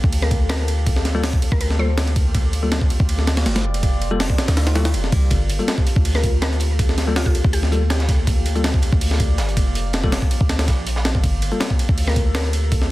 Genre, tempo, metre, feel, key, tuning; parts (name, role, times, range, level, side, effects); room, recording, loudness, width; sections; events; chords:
drum and bass, jungle; 162 BPM; 4/4; straight; G minor; A4 = 443 Hz
warbly tape-like pad; sustained chords; 0.0-12.9 s; Bb3 to D5; -31 LUFS; right 1 dB; chorus, built-in reverb, phaser, vintage 12-bit sampler grit
warm 808-style bass; bass; 0.0-12.9 s; F1 to D2; -20 LUFS; equal
breakbeat sampler-style drum kit; drums; 0.0-12.9 s; hi-hat, kick drum, ride cymbal, snare drum; -20 LUFS; equal
mallet-like synth pluck; melody; 0.2-2.2, 6.2-8.2, 12.1-12.6 s; F4 to C5; -30 LUFS; left 1 dB; chorus, dub echo
bell-like tine electric piano; stabs; 1.1-11.7 s; G3 to A4; -28 LUFS; left 3 dB; dub echo
crunchy breakbeat drum kit; drums; 5.3-12.8 s; hi-hat, snare drum; -33 LUFS; right 2 dB; high-pass filter on hats, high-pass filter on snare, high-pass filter on room
little or no reverb; dense, heavily limited modern master, vinyl crackle; -16 LUFS; side -17 dB against mid
0.0-12.9 A section
0.0 Gm9